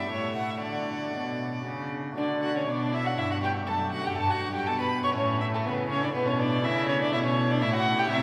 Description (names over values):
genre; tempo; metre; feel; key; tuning
classical, baroque-style sonata movement with continuo; 122 BPM; 3/4; rubato; D major; A4 = 445 Hz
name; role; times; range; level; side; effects
dark violin; melody; 0.0-8.2 s; A4 to C#6; -32 LUFS; equal; none
rich violin; second line; 0.0-8.2 s; A3 to F#5; -34 LUFS; equal; none
chamber organ, flutes; accompaniment; 0.0-8.2 s; F#2 to G4; -36 LUFS; equal; none
warm cello; bass; 0.0-8.2 s; F#2 to D3; -34 LUFS; equal; none
room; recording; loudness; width
wet cathedral reverb, RT60 5.8 s; recorded in a church or concert hall; -28 LUFS; mono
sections
0.0-2.2 A section; 2.2-8.2 B section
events
none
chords
0.1 A; 0.6 D; 3.7 D/F#; 5.2 A